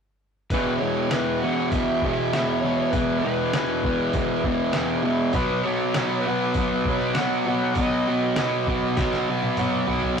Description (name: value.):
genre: garage rock duo or trio.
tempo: 99 BPM.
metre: 4/4.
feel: straight.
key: unclear.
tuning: A4 = 440 Hz.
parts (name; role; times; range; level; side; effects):
overdriven slide guitar; melody; 0.5-8.9 s; B4 to F#5; -29 LUFS; left 3 dB; none.
fuzz guitar; riff; 0.5-10.2 s; E2 to B3; -22 LUFS; right 1 dB; distortion.
trip hop sampler-style drum kit; drums; 0.5-10.2 s; hi-hat, kick drum, snare drum, toms; -28 LUFS; equal; none.
room: moderate stone room reverb, RT60 1.0 s.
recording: rough rehearsal-room recording, warm saturation.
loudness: -21 LUFS.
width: side -6 dB against mid.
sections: 0.5-10.2 A section.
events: drum fill 9.0-10.2.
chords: 0.5 E5; 5.4 B.